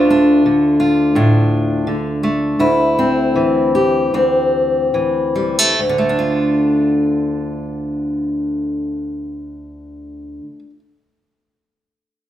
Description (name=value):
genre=folk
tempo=69-86 BPM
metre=4/4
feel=straight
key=D minor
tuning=A4 = 440 Hz
part: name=fingerpicked steel-string acoustic guitar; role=accompaniment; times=0.0-10.8 s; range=D2 to G4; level=-14 LUFS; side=equal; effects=none
room=moderate large studio reverb, RT60 1.1 s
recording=none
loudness=-14 LUFS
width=side -12 dB against mid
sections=0.0-5.8 A section; 5.8-9.3 B section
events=slowing down 0.0-5.8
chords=0.0 Dm; 2.6 C6/D; 5.8 Dm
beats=0.44 1.15 1.86 | 2.59 3.35 4.13 4.94 | 5.79 6.66 7.52 8.39